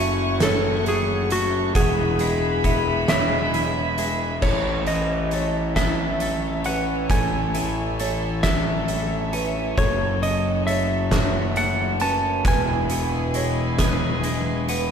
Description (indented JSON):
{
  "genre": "post-rock",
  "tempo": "45 BPM (dotted quarters)",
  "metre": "6/8",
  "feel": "straight",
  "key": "A major",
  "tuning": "A4 = 440 Hz",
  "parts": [
    { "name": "clean lap steel guitar", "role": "melody", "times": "0.0-14.7 s", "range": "F#4 to A5", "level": "-26 LUFS", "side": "equal", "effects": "none" },
    { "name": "bright chamber string section", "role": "sustained chords", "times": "0.0-14.9 s", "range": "A3 to C#6", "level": "-30 LUFS", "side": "equal", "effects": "none" },
    { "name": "felt-muted upright piano", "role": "arpeggios", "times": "0.0-14.9 s", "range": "A4 to F#5", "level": "-32 LUFS", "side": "right 6 dB", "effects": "none" },
    { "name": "twelve-string electric guitar", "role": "arpeggios", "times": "0.0-14.9 s", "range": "E2 to A4", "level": "-28 LUFS", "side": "left 3 dB", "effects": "none" },
    { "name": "fuzz picked electric bass", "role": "bass", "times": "0.0-14.9 s", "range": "E1 to A1", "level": "-26 LUFS", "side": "equal", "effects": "overdrive" },
    { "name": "oversized low-tuned drum kit", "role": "drums", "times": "0.4-14.9 s", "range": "crash cymbal, hi-hat, kick drum, snare drum", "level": "-26 LUFS", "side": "equal", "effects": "none" }
  ],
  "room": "wet concert hall reverb, RT60 2.6 s",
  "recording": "recorded in a church or concert hall",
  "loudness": "-20 LUFS",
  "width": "side -7 dB against mid",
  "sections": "0.0-4.4 A section; 4.4-14.9 B section",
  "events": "none",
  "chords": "0.0 F#m; 1.8 E; 4.4 A; 9.8 F#m; 12.5 E"
}